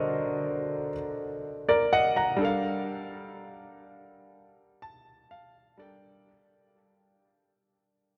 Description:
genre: R&B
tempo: 62 BPM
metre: 4/4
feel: straight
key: G minor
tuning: A4 = 440 Hz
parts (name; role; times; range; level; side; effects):
- clear concert grand piano; solo; 0.0-6.3 s; D3 to Bb5; -29 LUFS; equal; analog delay
room: wet cathedral reverb, RT60 4.9 s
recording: dreamy mix soaked in reverb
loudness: -28 LUFS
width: mono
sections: 0.0-6.3 A section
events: fade-out 0.0-6.3; grand piano fill 4.3-6.3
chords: 0.0 D7b9b13; 2.4 Gm9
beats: 0.47 1.44 | 2.41 3.38 4.34 5.31

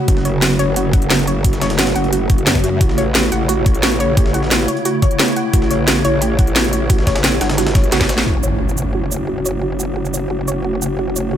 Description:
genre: dark technical drum and bass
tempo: 176 BPM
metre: 4/4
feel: straight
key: F# phrygian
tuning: A4 = 443 Hz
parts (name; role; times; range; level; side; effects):
- swarming drone; sustained chords; 0.0-11.4 s; C#3 to F#4; -20 LUFS; equal; built-in reverb, sidechain pumping
- soft round pluck; arpeggios; 0.1-11.4 s; F#4 to F#5; -22 LUFS; right 1 dB; chorus, sidechain pumping, dub echo
- growl bass; bass; 0.1-11.4 s; F#1 to F#2; -20 LUFS; equal; chorus, overdrive
- breakbeat sampler-style drum kit; drums; 0.1-8.3 s; hi-hat, snare drum; -27 LUFS; equal; high-pass filter on hats, high-pass filter on snare
- drum and bass drum kit; drums; 0.1-11.2 s; cabasa, hi-hat, snare drum; -18 LUFS; equal; none
- electronic kick drum; drums; 0.1-8.1 s; none; -15 LUFS; equal; none
- impact; sound effects; 8.3-9.6 s; none; -22 LUFS; equal; none
room: light reverb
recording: none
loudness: -14 LUFS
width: side -10 dB against mid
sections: 0.0-8.3 A section; 8.3-11.4 B section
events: drum fill 7.9-8.3; impact 8.3-9.6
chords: 0.0 F#m; 2.8 A; 8.3 F#m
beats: | 0.08 0.42 0.76 1.10 | 1.45 1.79 2.13 2.47 | 2.81 3.15 3.49 3.83 | 4.17 4.51 4.85 5.20 | 5.54 5.88 6.22 6.56 | 6.90 7.24 7.58 7.92 | 8.26 8.60 8.95 9.29 | 9.63 9.97 10.31 10.65 | 10.99 11.33

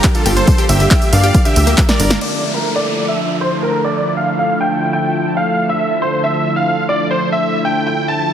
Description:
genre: uplifting trance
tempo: 138 BPM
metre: 4/4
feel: straight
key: D minor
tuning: A4 = 441 Hz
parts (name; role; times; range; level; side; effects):
- big supersaw lead; melody; 0.0-8.3 s; F4 to A5; -19 LUFS; right 1 dB; cassette tape, sidechain pumping, low-pass filter, dub echo
- bright baby grand piano; second line; 0.0-8.3 s; A4 to A5; -22 LUFS; equal; sidechain pumping, low-pass filter, dub echo
- lush unison pad; sustained chords; 0.0-8.3 s; D3 to Bb4; -19 LUFS; equal; chorus, sidechain pumping
- electronic kick drum; drums; 0.0-1.9 s; none; -13 LUFS; equal; overdrive
- punchy analog drum machine; drums; 0.0-2.3 s; crash cymbal, handclaps, hi-hat, ride cymbal, snare drum, tambourine; -19 LUFS; equal; overdrive
- analog pluck; arpeggios; 0.1-2.2 s; D3 to G4; -24 LUFS; left 4 dB; chorus, sidechain pumping, dub echo
- plucky analog bass; bass; 0.3-2.2 s; G1 to G2; -14 LUFS; equal; sidechain pumping
- downlifter; sound effects; 2.2-5.7 s; none; -26 LUFS; left 1 dB; none
room: moderate lush hall reverb, RT60 2.0 s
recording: heavily compressed radio sound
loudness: -13 LUFS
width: side -9 dB against mid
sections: 0.0-2.2 A section; 2.2-8.3 B section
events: drop 0.0-2.2; drum fill 1.9-2.2; band accent 2.1; filter sweep on supersaw synth 2.2-8.3; filter sweep on grand piano 2.2-8.3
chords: 0.0 Gm; 2.2 Dmadd9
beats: 0.04 | 0.47 0.91 1.34 1.78 | 2.21 2.65 3.08 3.52 | 3.95 4.39 4.82 5.26 | 5.69 6.13 6.56 7.00 | 7.43 7.87 8.30

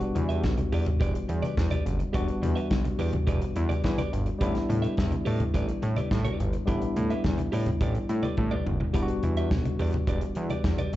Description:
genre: disco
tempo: 106 BPM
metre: 4/4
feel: straight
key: unclear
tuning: A4 = 441 Hz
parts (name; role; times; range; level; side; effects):
- clean electric guitar; accompaniment; 0.0-11.0 s; G4 to E5; -36 LUFS; right 5 dB; plate reverb, slapback echo
- tine electric piano; accompaniment; 0.0-11.0 s; G3 to F#4; -32 LUFS; left 3 dB; medium stereo tremolo, plate reverb, slapback echo
- fat analog bass; bass; 0.0-11.0 s; E1 to A2; -27 LUFS; equal; none
- warm soul drum kit; drums; 0.0-11.0 s; hi-hat, kick drum, snare drum, toms; -29 LUFS; equal; none
- congas; percussion; 0.2-11.0 s; none; -33 LUFS; left 2 dB; none
room: light reverb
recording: live gig heard through the venue's PA, club reverb, nothing above 7.9 kHz, faint mains hum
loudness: -24 LUFS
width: side -15 dB against mid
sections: 0.0-11.0 A section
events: drum fill 8.4-8.9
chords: 0.0 Em7; 4.4 A9sus4; 8.9 Em7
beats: 0.44 1.00 1.57 | 2.14 2.71 3.27 3.84 | 4.41 4.98 5.54 6.11 | 6.68 7.24 7.81 8.38 | 8.94 9.51 10.07 10.64

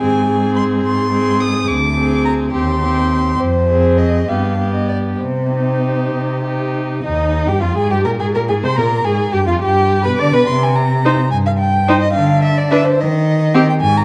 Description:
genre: quick classical-period movement for string quartet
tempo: 64-73 BPM (dotted quarters)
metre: 6/8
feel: rubato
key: C minor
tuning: A4 = 438 Hz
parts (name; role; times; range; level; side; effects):
- dark violin; melody; 0.0-14.0 s; C5 to Eb6; -22 LUFS; equal; none
- warm violin; second line; 0.0-13.7 s; Eb4 to D5; -24 LUFS; equal; none
- rich viola; accompaniment; 0.0-13.7 s; B3 to D5; -22 LUFS; equal; none
- rich cello; bass; 0.0-14.0 s; D2 to Eb3; -19 LUFS; equal; none
room: wet recital hall reverb, RT60 1.9 s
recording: dark, warm production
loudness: -16 LUFS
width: mono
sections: 0.0-7.0 A section; 7.0-14.0 B section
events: none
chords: 0.0 Ab; 1.7 Bb9/D (rootless); 2.5 Cm/Eb; 3.4 Fm; 4.3 G7; 5.2 Cm; 7.0 Fm9/Eb; 7.9 C5/G; 8.8 Fm; 9.6 G; 10.5 Cm; 12.2 Dmadd9; 13.0 Cm/Eb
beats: | 0.01 0.85 | 1.69 2.54 | 3.40 4.29 | 5.21 6.13 | 7.05 7.92 | 8.78 9.62 | 10.48 11.33 | 12.16 12.99 | 13.82

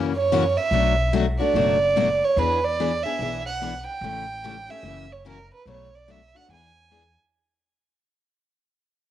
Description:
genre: acoustic string swing (jazz manouche)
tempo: 146 BPM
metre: 4/4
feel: swing 62% on 8ths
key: unclear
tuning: A4 = 440 Hz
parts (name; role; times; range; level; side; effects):
- picked steel-string acoustic guitar; accompaniment; 0.0-7.0 s; B2 to G#4; -26 LUFS; left 7 dB; cassette tape
- upright bass; bass; 0.0-7.1 s; F#1 to F#2; -28 LUFS; left 1 dB; none
- dark violin; melody; 0.2-7.1 s; A#4 to G#5; -23 LUFS; right 4 dB; cassette tape
room: moderate spring reverb, RT60 1.5 s, small room ambience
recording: home recording on cassette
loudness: -20 LUFS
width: side -11 dB against mid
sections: 0.0-7.3 A section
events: fade-out 0.0-7.3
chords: 0.0 F#7; 0.7 Bm7; 2.4 E7; 4.0 A7; 4.8 F#7; 5.7 Bm7; 6.5 E7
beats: 0.31 | 0.72 1.14 1.55 1.96 | 2.37 2.78 3.19 3.61 | 4.02 4.43 4.84 5.25 | 5.67 6.08 6.49 6.91

